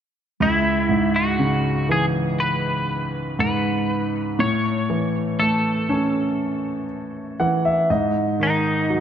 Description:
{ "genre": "pop", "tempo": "60 BPM", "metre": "4/4", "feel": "straight", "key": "C# minor", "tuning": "A4 = 441 Hz", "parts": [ { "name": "twelve-string electric guitar", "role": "melody", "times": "0.4-9.0 s", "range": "D#4 to C#5", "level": "-23 LUFS", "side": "left 1 dB", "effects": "none" }, { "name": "clear grand piano", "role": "accompaniment", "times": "0.4-9.0 s", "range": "C#2 to F#5", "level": "-20 LUFS", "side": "equal", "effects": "none" } ], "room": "moderate lush hall reverb, RT60 2.0 s, small room ambience", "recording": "none", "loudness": "-19 LUFS", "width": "side -9 dB against mid", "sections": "0.4-9.0 A section", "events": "grand piano fill 6.9-8.4", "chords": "0.4 C#m7; 4.4 A; 7.9 G#5" }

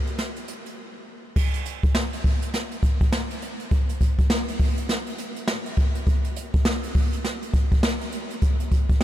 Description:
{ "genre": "R&B", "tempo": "102 BPM", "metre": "4/4", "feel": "swing 61% on 16ths", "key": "none", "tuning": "none", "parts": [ { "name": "jazz brush drum kit", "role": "drums", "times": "0.1-9.0 s", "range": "crash cymbal, hi-hat, kick drum, snare drum", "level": "-21 LUFS", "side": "equal", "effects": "none" } ], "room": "light reverb", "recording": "none", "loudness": "-22 LUFS", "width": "side -13 dB against mid", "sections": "0.0-1.4 A section; 1.4-9.0 B section", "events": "none", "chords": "none" }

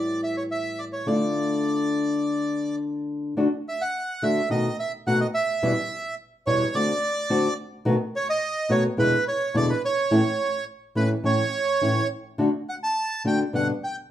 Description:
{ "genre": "tango", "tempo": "106 BPM", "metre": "4/4", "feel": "rubato", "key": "D minor, D major from 3.4 s", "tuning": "A4 = 440 Hz", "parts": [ { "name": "bandoneon", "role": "melody", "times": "0.0-14.0 s", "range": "B4 to A5", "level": "-25 LUFS", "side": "right 2 dB", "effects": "none" }, { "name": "nylon-string guitar", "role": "accompaniment", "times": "0.0-13.7 s", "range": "E2 to G4", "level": "-23 LUFS", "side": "left 1 dB", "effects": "none" } ], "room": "moderate large studio reverb, RT60 0.9 s", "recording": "band playing live in one room", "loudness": "-22 LUFS", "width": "side -11 dB against mid", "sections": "0.0-3.4 A section; 3.4-14.1 B section", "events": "none", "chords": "0.0 A7; 1.1 Dm; 3.4 D; 4.5 B7; 5.6 Em; 6.7 D7; 7.9 B7; 9.0 E7; 10.1 A; 12.4 D; 13.5 G" }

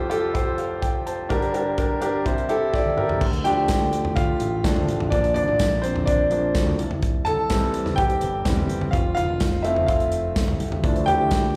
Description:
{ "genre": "piano-driven pop", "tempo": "126 BPM", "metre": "4/4", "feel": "straight", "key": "F major", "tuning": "A4 = 439 Hz", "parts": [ { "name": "clear grand piano", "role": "accompaniment", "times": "0.0-11.6 s", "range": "F1 to A5", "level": "-24 LUFS", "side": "equal", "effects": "slapback echo" }, { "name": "natural country drum kit", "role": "drums", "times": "0.1-11.4 s", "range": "crash cymbal, hi-hat, kick drum, snare drum, toms", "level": "-28 LUFS", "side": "equal", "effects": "none" }, { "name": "modern bright picked electric bass", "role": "bass", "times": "3.2-11.6 s", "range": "E1 to D2", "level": "-29 LUFS", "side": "equal", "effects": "none" }, { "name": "tambourine", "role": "percussion", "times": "3.7-11.4 s", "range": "none", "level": "-46 LUFS", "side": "equal", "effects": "none" }, { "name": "dark French horn section", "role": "second line", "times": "10.8-11.5 s", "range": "E3 to E4", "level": "-32 LUFS", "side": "equal", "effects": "slapback echo" } ], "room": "moderate lush hall reverb, RT60 2.0 s, small room ambience", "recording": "live gig heard through the venue's PA, club reverb", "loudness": "-22 LUFS", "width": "mono", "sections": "0.0-3.2 A section; 3.2-11.6 B section", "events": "drum fill 2.7-3.2; grand piano solo 3.2-11.6", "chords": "0.0 Fadd9; 1.3 Gm; 2.3 C; 3.2 Dm; 5.1 Bb; 6.8 C; 8.9 F; 10.8 Dm" }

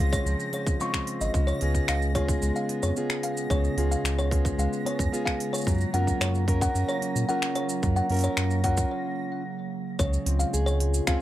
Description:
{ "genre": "folktronica", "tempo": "111 BPM", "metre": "4/4", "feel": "straight", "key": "Db major", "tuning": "A4 = 442 Hz", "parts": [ { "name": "fingerpicked plugged-in steel-string acoustic guitar", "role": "arpeggios", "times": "0.0-11.2 s", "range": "Db3 to Bb4", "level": "-30 LUFS", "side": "left 1 dB", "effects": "tape echo" }, { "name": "warm sub bass", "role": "bass", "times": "0.0-11.2 s", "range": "Ab1 to Bb2", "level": "-26 LUFS", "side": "equal", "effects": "none" }, { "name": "backwards swelling texture", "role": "texture", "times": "0.0-8.9 s", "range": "Bb6", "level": "-39 LUFS", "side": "right 1 dB", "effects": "built-in reverb" }, { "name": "kalimba", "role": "second line", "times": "0.1-11.2 s", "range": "Db5 to Db6", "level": "-32 LUFS", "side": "left 1 dB", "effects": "digital delay" }, { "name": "electronic kick drum", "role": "drums", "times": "0.1-11.2 s", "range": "none", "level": "-28 LUFS", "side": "equal", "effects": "none" }, { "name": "organic electronic drum kit", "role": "drums", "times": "0.1-11.2 s", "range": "finger snaps, hi-hat, shaker", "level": "-32 LUFS", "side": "equal", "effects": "none" }, { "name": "warbly tape-like pad", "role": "sustained chords", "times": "1.3-11.2 s", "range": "Db3 to F4", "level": "-35 LUFS", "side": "right 2 dB", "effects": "chorus, built-in reverb" } ], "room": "moderate studio reverb, RT60 0.6 s", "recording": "none", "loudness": "-24 LUFS", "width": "side -14 dB against mid", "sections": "0.0-10.0 A section; 10.0-11.2 B section", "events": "break 8.9-10.0", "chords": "0.0 Dbmaj7; 1.3 Db7; 5.7 Gbmaj7; 10.0 Dbmaj7" }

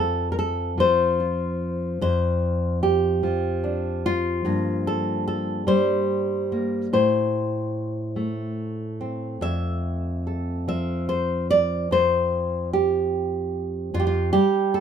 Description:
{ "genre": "folk, solo fingerstyle acoustic guitar", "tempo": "48 BPM (dotted quarters)", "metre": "6/8", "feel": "rubato", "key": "F major", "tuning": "A4 = 439 Hz", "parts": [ { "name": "nylon-string guitar", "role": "solo", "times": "0.0-14.8 s", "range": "F2 to E5", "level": "-21 LUFS", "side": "equal", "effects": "none" } ], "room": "light reverb", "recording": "minimal, uncompressed stereo recording", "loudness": "-21 LUFS", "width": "side -8 dB against mid", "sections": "0.0-14.8 A section", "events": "none", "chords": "0.0 F5; 2.0 Dm7/F; 4.4 Gm7; 6.9 Am; 9.4 Fmaj7; 11.9 N.C." }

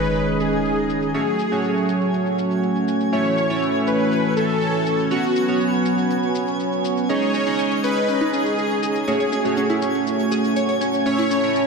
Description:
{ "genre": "progressive house", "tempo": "121 BPM", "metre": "4/4", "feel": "straight", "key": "unclear", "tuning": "A4 = 440 Hz", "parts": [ { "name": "soft supersaw", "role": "melody", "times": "0.0-11.7 s", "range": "F#4 to C#5", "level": "-24 LUFS", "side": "left 1 dB", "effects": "cassette tape, ping-pong delay" }, { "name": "warm analog pad", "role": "sustained chords", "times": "0.0-11.7 s", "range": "D#3 to C#5", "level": "-23 LUFS", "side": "equal", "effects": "chorus" }, { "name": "chorused polysynth", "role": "stabs", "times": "0.0-11.7 s", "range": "A3 to D#5", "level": "-24 LUFS", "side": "right 3 dB", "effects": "analog delay" }, { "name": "shaker", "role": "drums", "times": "0.0-11.7 s", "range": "none", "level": "-40 LUFS", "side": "left 10 dB", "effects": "low-pass filter on hats, low-pass filter on perc, low-pass filter on snare, low-pass filter on cymbals" }, { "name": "sub drop and riser", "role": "sound effects", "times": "0.0-1.1, 11.6-11.7 s", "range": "none", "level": "-34 LUFS", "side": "equal", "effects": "none" }, { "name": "twinkling granular texture", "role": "texture", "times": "0.0-11.7 s", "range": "G#5", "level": "-33 LUFS", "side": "left 1 dB", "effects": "built-in reverb" }, { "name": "glassy wavetable pluck", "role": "arpeggios", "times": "7.3-11.4 s", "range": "C#4 to C#5", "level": "-25 LUFS", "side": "left 1 dB", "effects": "chorus, analog delay" } ], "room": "wet lush hall reverb, RT60 2.4 s", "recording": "dreamy mix soaked in reverb", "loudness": "-18 LUFS", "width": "side -4 dB against mid", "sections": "0.0-11.7 A section", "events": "impact 0.0-1.1; filter sweep on analog synth pad 0.0-11.7", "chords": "0.0 C#sus2; 1.1 F#m; 3.1 A; 5.1 Bsus2; 7.1 C#sus2; 9.1 F#m; 11.1 A" }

